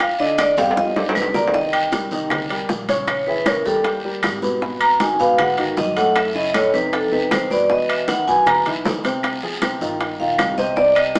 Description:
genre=Afro-Cuban jazz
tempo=156 BPM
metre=4/4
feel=straight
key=unclear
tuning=A4 = 440 Hz
part: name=vibraphone with medium hard mallets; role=melody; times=0.0-11.2 s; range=G4 to Bb5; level=-18 LUFS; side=equal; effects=none
part: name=dark upright piano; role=accompaniment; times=0.0-11.2 s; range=A2 to D6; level=-22 LUFS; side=equal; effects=none
part: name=upright bass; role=bass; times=0.0-11.2 s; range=G1 to Ab2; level=-35 LUFS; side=equal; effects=none
part: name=bongos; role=percussion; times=0.0-11.2 s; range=none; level=-28 LUFS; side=equal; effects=none
part: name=claves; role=percussion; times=0.0-11.2 s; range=none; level=-27 LUFS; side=equal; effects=none
part: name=congas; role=percussion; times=0.0-11.2 s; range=none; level=-30 LUFS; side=equal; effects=none
part: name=guiro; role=percussion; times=0.0-11.2 s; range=none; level=-32 LUFS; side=equal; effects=none
part: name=timbales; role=percussion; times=0.0-11.2 s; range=none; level=-25 LUFS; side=right 1 dB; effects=none
room=wet stone room reverb, RT60 1.2 s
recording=band playing live in one room, small speaker sound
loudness=-16 LUFS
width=side -29 dB against mid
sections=0.0-1.5 A section; 1.5-11.2 A section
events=vibraphone solo 0.0-11.2; drum fill 0.6-1.5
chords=0.0 Ebmaj9; 0.8 G5; 1.5 Cm7; 3.1 Bbm7b5; 3.9 Eb; 4.6 Abm7; 6.2 Gbm7; 6.9 F5; 7.7 E5; 9.2 Dm7b5; 10.0 Eb69/G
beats=| 0.00 0.39 0.77 1.16 | 1.54 1.93 2.31 2.70 | 3.08 3.47 3.85 4.24 | 4.62 5.01 5.39 5.78 | 6.16 6.55 6.93 7.32 | 7.70 8.09 8.47 8.86 | 9.24 9.62 10.01 10.39 | 10.78 11.16

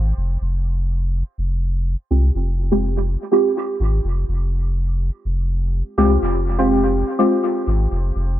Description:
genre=dub techno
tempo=124 BPM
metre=4/4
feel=straight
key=F minor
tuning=A4 = 444 Hz
part: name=warm sub bass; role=bass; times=0.0-8.4 s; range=F1 to C2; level=-19 LUFS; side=equal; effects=none
part: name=deep mellow chord stab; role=stabs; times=2.1-8.4 s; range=Ab3 to G4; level=-18 LUFS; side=equal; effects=chorus, phaser, cassette tape, dub echo
room=light reverb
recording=echo-heavy mix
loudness=-17 LUFS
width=side -12 dB against mid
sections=0.0-8.4 A section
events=none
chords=0.0 Fmadd9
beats=| 0.41 0.90 1.38 1.86 | 2.35 2.83 3.32 3.80 | 4.28 4.77 5.25 5.74 | 6.22 6.70 7.19 7.67 | 8.15

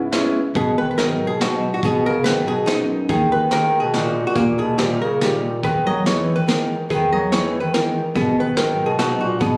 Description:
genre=musette waltz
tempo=142 BPM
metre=3/4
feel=swing 53% on 8ths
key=G# minor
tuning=A4 = 443 Hz
part: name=archtop guitar, miked and amplified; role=melody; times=0.0-9.6 s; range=A#3 to D#5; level=-24 LUFS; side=equal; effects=none
part: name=clear bass clarinet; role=second line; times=0.0-9.6 s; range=F#2 to F#3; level=-24 LUFS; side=equal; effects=none
part: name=bright upright piano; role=accompaniment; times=0.1-9.2 s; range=D#3 to E4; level=-26 LUFS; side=equal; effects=none
part: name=vintage brush drum kit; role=drums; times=0.1-9.5 s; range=hi-hat, kick drum, snare drum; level=-27 LUFS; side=equal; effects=none
part: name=upright bass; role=bass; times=0.6-9.6 s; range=G#1 to E2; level=-30 LUFS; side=equal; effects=none
room=moderate recital hall reverb, RT60 1.4 s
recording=recorded on a phone in the room, club reverb, compression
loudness=-19 LUFS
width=mono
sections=0.6-9.6 A section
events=none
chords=0.0 C#m7; 0.6 G#m7; 3.1 D#sus4; 4.4 D#; 5.6 Emaj7; 8.2 G#m7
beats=0.12 | 0.56 0.99 1.41 | 1.83 2.26 2.68 | 3.10 3.52 3.94 | 4.36 4.79 5.21 | 5.64 6.06 6.49 | 6.91 7.32 7.74 | 8.16 8.58 8.99 | 9.41

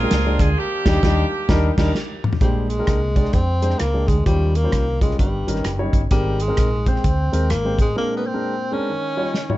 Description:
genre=uptempo gospel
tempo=130 BPM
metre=4/4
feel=swing 63% on 8ths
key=Eb major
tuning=A4 = 440 Hz
part: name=clear saxophone section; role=melody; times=0.0-2.0 s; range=Bb3 to Bb4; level=-24 LUFS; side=right 2 dB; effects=tape echo
part: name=warm concert grand piano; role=accompaniment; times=0.0-9.6 s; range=G2 to Eb5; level=-24 LUFS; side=equal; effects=none
part: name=fingered electric bass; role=bass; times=0.0-7.9 s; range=Gb1 to F2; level=-21 LUFS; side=equal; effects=none
part: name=warm soul drum kit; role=drums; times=0.1-9.6 s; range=crash cymbal, hi-hat, kick drum, rim click, snare drum, toms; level=-20 LUFS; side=equal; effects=none
part: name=breathy tenor saxophone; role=melody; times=2.4-9.6 s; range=G3 to Db4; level=-24 LUFS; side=equal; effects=none
room=light reverb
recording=nothing above 8.0 kHz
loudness=-17 LUFS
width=side -16 dB against mid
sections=0.0-2.4 A section; 2.4-9.6 B section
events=band accent 0.6-2.4; drum fill 1.9-2.4, 9.3; break 8.0-9.6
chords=0.0 Bb13; 0.6 Ebmaj7; 2.4 Bb13; 4.3 Eb13; 5.2 Eb7/G; 6.1 Abmaj9; 8.0 Bb9; 8.9 Eb9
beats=0.11 | 0.57 1.03 1.49 1.95 | 2.41 2.87 3.34 3.80 | 4.26 4.72 5.19 5.65 | 6.11 6.58 7.04 7.50 | 7.96 8.43 8.89 9.35

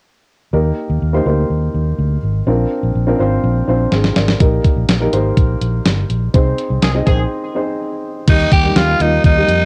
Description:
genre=1980s-style pop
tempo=124 BPM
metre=4/4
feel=straight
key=Eb major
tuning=A4 = 439 Hz
part: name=dark baby grand piano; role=accompaniment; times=0.5-9.7 s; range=G3 to Eb5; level=-21 LUFS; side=equal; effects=cassette tape
part: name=fingered electric bass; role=bass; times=0.5-9.7 s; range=G1 to F2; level=-19 LUFS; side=equal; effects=none
part: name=clean 12-bit digital drum machine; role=drums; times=3.9-9.6 s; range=crash cymbal, hi-hat, kick drum, snare drum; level=-16 LUFS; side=equal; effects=cassette tape
part: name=warm horn section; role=stabs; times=6.8-7.2 s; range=Eb3 to Ab4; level=-28 LUFS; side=equal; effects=cassette tape, analog delay
part: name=raspy tenor saxophone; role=melody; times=8.3-9.7 s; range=Eb4 to G4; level=-17 LUFS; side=equal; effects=cassette tape
room=light reverb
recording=home recording on cassette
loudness=-15 LUFS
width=mono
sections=0.5-8.3 A section; 8.3-9.7 B section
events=drum fill 3.9-4.4; band accent 6.3-8.3; break 7.3-8.3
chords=0.5 Eb; 2.5 Bbadd9; 4.4 Eb; 6.3 Ab; 8.3 Eb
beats=| 0.53 1.02 1.50 1.99 | 2.47 2.95 3.44 3.92 | 4.41 4.89 5.37 5.86 | 6.34 6.82 7.31 7.79 | 8.28 8.76 9.24

